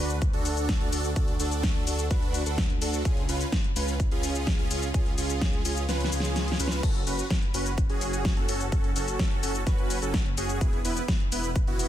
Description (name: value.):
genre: EDM, festival progressive house.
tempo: 127 BPM.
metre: 4/4.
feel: straight.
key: F# minor.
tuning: A4 = 440 Hz.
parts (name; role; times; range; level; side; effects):
supersaw chords; riff; 0.0-11.9 s; B3 to B4; -31 LUFS; right 1 dB; sidechain pumping, ping-pong delay.
wide detuned saw bass; bass; 0.0-11.9 s; E1 to D2; -31 LUFS; equal; chorus, sidechain pumping.
big-room dance drum kit; drums; 0.1-11.9 s; crash cymbal, hi-hat, shaker, snare drum; -32 LUFS; left 2 dB; none.
electronic kick drum; drums; 0.2-11.7 s; none; -26 LUFS; equal; none.
room: little or no reverb.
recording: dense, heavily limited modern master.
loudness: -24 LUFS.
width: side -12 dB against mid.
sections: 0.0-11.9 A section.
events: kick drops out 5.9-6.8; drum fill 5.9-6.8.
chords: 0.0 D; 3.1 C#; 6.8 F#m; 10.6 E.